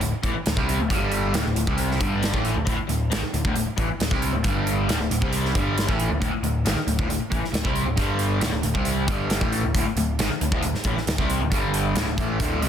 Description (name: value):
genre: hard rock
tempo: 136 BPM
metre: 4/4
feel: straight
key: unclear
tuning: A4 = 443 Hz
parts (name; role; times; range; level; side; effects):
- cranked stack guitar; riff; 0.0-12.7 s; D2 to C4; -27 LUFS; left 11 dB; overdrive, phaser
- overdriven semi-hollow guitar; riff; 0.0-12.7 s; D2 to C4; -27 LUFS; right 10 dB; spring reverb
- overdriven picked electric bass; bass; 0.0-12.7 s; D1 to C2; -27 LUFS; equal; none
- big rock drum kit; drums; 0.0-12.7 s; hi-hat, kick drum, snare drum; -26 LUFS; equal; none
room: small room ambience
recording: dense, heavily limited modern master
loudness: -21 LUFS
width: side -9 dB against mid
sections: 0.0-12.7 A section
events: none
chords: 0.0 D5; 0.9 G5; 1.3 D5; 4.4 G5; 4.9 D5; 8.0 G5; 8.4 D5; 11.5 G5; 11.9 D5